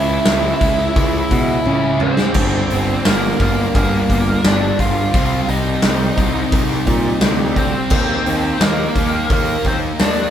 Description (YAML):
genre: quiet-loud alternative rock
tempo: 86 BPM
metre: 4/4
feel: straight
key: G minor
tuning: A4 = 439 Hz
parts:
  - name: biting lead guitar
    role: melody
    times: 0.0-10.3 s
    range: Bb3 to F5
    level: -20 LUFS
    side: equal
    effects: overdrive
  - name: fuzz guitar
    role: riff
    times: 0.0-10.3 s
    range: G2 to Eb4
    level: -27 LUFS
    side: right 1 dB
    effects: none
  - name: sludgy distorted guitar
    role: riff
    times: 0.0-10.3 s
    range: G2 to Eb4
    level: -25 LUFS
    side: left 6 dB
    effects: overdrive
  - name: thick fuzz guitar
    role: riff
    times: 0.0-10.3 s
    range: G2 to Eb4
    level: -24 LUFS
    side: right 5 dB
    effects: distortion
  - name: fuzz picked electric bass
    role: bass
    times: 0.0-10.3 s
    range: G1 to C#3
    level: -21 LUFS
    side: equal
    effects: overdrive
  - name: big rock drum kit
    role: drums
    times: 0.3-10.2 s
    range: crash cymbal, hi-hat, kick drum, snare drum, toms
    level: -18 LUFS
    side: equal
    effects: none
room: light reverb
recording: band playing live in one room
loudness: -14 LUFS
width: side -10 dB against mid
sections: 0.0-10.3 A section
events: drum fill 1.7-2.4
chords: 0.0 C#m; 2.4 Gm; 5.1 Cm; 7.9 Eb5